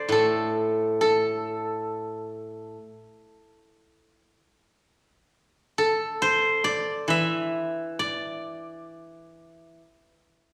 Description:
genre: chinese traditional, Chinese solo plucked strings.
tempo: 60-70 BPM.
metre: 4/4.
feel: rubato.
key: unclear.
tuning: A4 = 440 Hz.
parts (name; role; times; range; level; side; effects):
steel-string zither; solo; 0.0-10.5 s; A2 to E5; -26 LUFS; equal; none.
room: wet recital hall reverb, RT60 1.4 s.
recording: recorded in a church or concert hall, studio ambience.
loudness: -26 LUFS.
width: mono.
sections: 0.0-10.5 A section.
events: none.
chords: none.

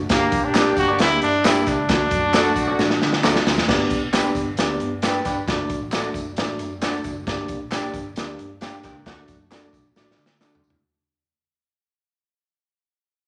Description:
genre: uptempo 1960s-style soul.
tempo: 134 BPM.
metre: 4/4.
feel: straight.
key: D major.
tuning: A4 = 440 Hz.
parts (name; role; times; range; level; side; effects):
vintage muted fingered electric bass; bass; 0.0-10.8 s; F#1 to D3; -36 LUFS; equal; none.
mellow trumpet; melody; 0.1-3.2 s; Bb3 to F#4; -24 LUFS; equal; none.
warm horn section; second line; 0.1-3.4, 9.1-9.2 s; A3 to G4; -30 LUFS; equal; none.
tine electric piano; accompaniment; 0.1-10.7 s; A3 to B5; -27 LUFS; equal; overdrive.
crunchy breakbeat drum kit; drums; 0.1-10.8 s; crash cymbal, hi-hat, kick drum, snare drum, toms; -25 LUFS; equal; none.
tambourine and handclaps; percussion; 0.1-10.7 s; none; -35 LUFS; equal; none.
electric guitar through a small old amp; stabs; 0.5-10.5 s; D4 to D5; -31 LUFS; equal; none.
room: moderate large studio reverb, RT60 1.2 s.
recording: none.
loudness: -21 LUFS.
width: mono.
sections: 0.0-3.7 A section; 3.7-10.9 B section.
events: drum fill 2.8-3.7, 10.0-10.9; fade-out 3.7-10.9; band accent 9.1-10.9.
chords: 0.1 Gm; 1.9 D; 3.7 G; 5.5 D/F#; 7.3 Gm; 9.1 D.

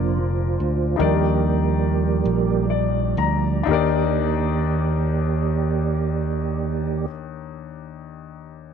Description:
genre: slow gospel.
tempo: 39-54 BPM (dotted quarters).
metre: 6/8.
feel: straight.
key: Eb major.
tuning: A4 = 440 Hz.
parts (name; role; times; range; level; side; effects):
warm concert grand piano; accompaniment; 0.0-8.7 s; Eb2 to Bb5; -26 LUFS; left 13 dB; none.
mellow tonewheel organ; sustained chords; 0.0-7.1 s; Eb3 to D5; -23 LUFS; right 10 dB; fast rotary speaker, chorus vibrato.
fingered electric bass; bass; 0.0-7.0 s; F1 to Eb2; -23 LUFS; left 1 dB; none.
room: light reverb.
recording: 1960s-style stereo with parts hard left and right, nothing above 10.3 kHz.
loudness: -19 LUFS.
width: side -7 dB against mid.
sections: 0.0-3.7 A section; 3.7-8.7 B section.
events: slowing down 0.0-3.7; tonewheel organ solo 0.0-3.7; grand piano fill 2.2-3.7.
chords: 0.0 Bb; 1.0 Ebmaj7.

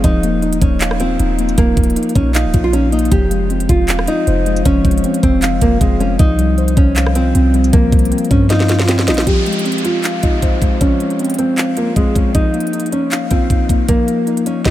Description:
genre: hip hop, trap.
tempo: 156 BPM.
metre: 4/4.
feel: half-time.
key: F minor.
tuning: A4 = 440 Hz.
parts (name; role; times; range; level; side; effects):
nylon-string guitar; melody; 0.0-14.7 s; Ab3 to G4; -18 LUFS; right 1 dB; low-pass filter, diffuse ambient delay.
muted felt-like synth keys; accompaniment; 0.0-14.7 s; F3 to F5; -18 LUFS; left 3 dB; chorus, low-pass filter.
clean 808-style bass; bass; 0.0-9.3 s; Db1 to G2; -16 LUFS; equal; none.
trap drum kit; drums; 0.0-14.7 s; handclaps, hi-hat, kick drum, rim click, snare drum; -16 LUFS; equal; none.
downlifter; sound effects; 9.3-12.3 s; none; -28 LUFS; equal; none.
room: light reverb.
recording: none.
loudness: -12 LUFS.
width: side -13 dB against mid.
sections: 0.0-9.3 A section; 9.3-14.7 B section.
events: drum fill 8.5-9.3; filter sweep 9.3-14.7.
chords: 0.0 Ebsus2; 3.1 Fm; 6.2 Csus4; 9.3 Fm; 12.3 Ebsus2.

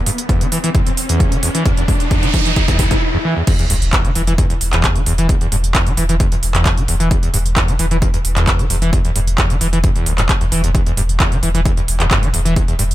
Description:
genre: driving peak-time techno.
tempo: 132 BPM.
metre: 4/4.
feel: straight.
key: E minor.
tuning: A4 = 441 Hz.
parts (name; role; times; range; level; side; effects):
riser, noise sweep and sub drop; sound effects; 0.0-5.3 s; none; -22 LUFS; equal; none.
screaming distorted acid line; riff; 0.1-12.8 s; D2 to E3; -19 LUFS; equal; distortion, lush chorus, sidechain pumping, dub echo.
techno drum kit; drums; 0.1-12.9 s; crash cymbal, handclaps, hi-hat; -20 LUFS; right 1 dB; sidechain pumping on hats, sidechain pumping on cymbals.
electronic kick drum; drums; 0.3-12.7 s; none; -16 LUFS; equal; none.
saturated sub bass; bass; 3.7-12.9 s; E1; -18 LUFS; equal; sidechain pumping, low-pass filter.
room: little or no reverb.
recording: none.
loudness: -13 LUFS.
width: side -14 dB against mid.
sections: 0.0-3.5 A section; 3.5-12.9 B section.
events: build-up 0.0-3.5; drum fill 0.0-3.0; riser 0.0-3.0; noise sweep 1.7-3.5; break 3.0-3.5; drop 3.5-12.9; impact 3.5-5.3.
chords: none.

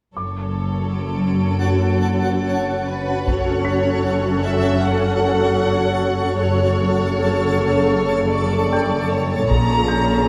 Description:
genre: cinematic, suspense film score.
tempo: 77 BPM.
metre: 4/4.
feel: straight.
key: F# phrygian.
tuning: A4 = 445 Hz.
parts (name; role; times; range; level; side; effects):
twinkling granular texture; sustained chords; 0.8-10.3 s; C#4 to C#6; -25 LUFS; equal; built-in reverb.
clear studio violin section; melody; 0.2-10.3 s; A4 to A#5; -27 LUFS; equal; none.
rich symphonic cello section; bass; 0.2-10.3 s; F#2 to A#2; -26 LUFS; equal; none.
rich symphonic double bass section; bass; 0.2-10.3 s; F#1 to A#1; -26 LUFS; equal; none.
clear symphonic violin section; texture; 0.2-9.1 s; C#5 to D7; -38 LUFS; equal; none.
felt-muted upright piano; texture; 0.2-10.3 s; G5 to B6; -35 LUFS; equal; none.
warm symphonic viola section; accompaniment; 3.3-10.3 s; C#3 to A4; -24 LUFS; equal; none.
taiko ensemble; drums; 3.3-4.8, 9.5-10.3 s; none; -26 LUFS; equal; none.
room: wet concert hall reverb, RT60 2.2 s.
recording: dark, warm production.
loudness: -19 LUFS.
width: mono.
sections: 0.2-3.3 A section; 3.3-10.3 B section.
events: none.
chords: 0.2 F#m; 9.5 A#m7.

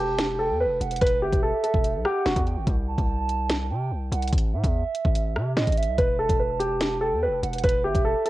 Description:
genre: hip hop, drill.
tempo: 145 BPM.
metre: 4/4.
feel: half-time.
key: E minor.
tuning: A4 = 440 Hz.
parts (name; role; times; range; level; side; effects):
dark concert grand piano; melody; 0.0-2.4, 6.0-8.3 s; F#4 to B4; -24 LUFS; equal; low-pass filter, cassette tape, tape echo.
hollow clarinet-like synth lead; second line; 0.0-8.3 s; D#5 to A5; -31 LUFS; right 7 dB; chorus, cassette tape, tape echo.
distorted 808-style bass; bass; 0.0-8.1 s; E1 to C3; -28 LUFS; equal; distortion.
drill drum kit; drums; 0.2-8.3 s; hi-hat, kick drum, rim click, snare drum; -25 LUFS; equal; cassette tape.
room: digital ambience.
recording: home recording on cassette.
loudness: -22 LUFS.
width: side -16 dB against mid.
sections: 0.0-8.3 A section.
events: none.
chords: 0.0 Em; 2.7 C5; 4.3 Am; 6.0 Em.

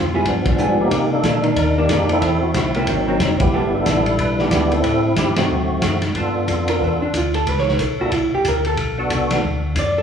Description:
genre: soul jazz organ trio.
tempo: 183 BPM.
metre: 4/4.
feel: swing 61% on 8ths.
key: unclear.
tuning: A4 = 440 Hz.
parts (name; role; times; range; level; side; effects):
percussive tonewheel organ; melody; 0.0-9.4 s; F3 to B4; -20 LUFS; equal; slow rotary speaker, overdrive, chorus vibrato.
tonewheel organ; bass; 0.0-10.0 s; F1 to C3; -23 LUFS; left 1 dB; overdrive, chorus vibrato, slow rotary speaker.
vintage hollow-body jazz guitar; accompaniment; 0.1-10.0 s; Eb3 to D5; -22 LUFS; right 1 dB; none.
vintage drum kit; drums; 0.3-9.9 s; hi-hat, kick drum, ride cymbal, snare drum; -22 LUFS; equal; none.
room: wet large studio reverb, RT60 1.4 s.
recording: band playing live in one room, small room ambience.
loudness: -16 LUFS.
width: side -7 dB against mid.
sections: 0.0-6.2 A section; 6.2-10.0 B section.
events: band accent 0.4, 3.4, 5.3; hollow-body jazz guitar solo 6.2-10.0.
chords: 0.3 G7b9; 0.9 Cm9; 2.2 C7#11; 2.9 Ab9; 3.5 G69; 4.8 Am7; 5.5 D7b9; 6.2 G7; 7.5 Bm11; 8.1 Csus2; 8.8 Bm7.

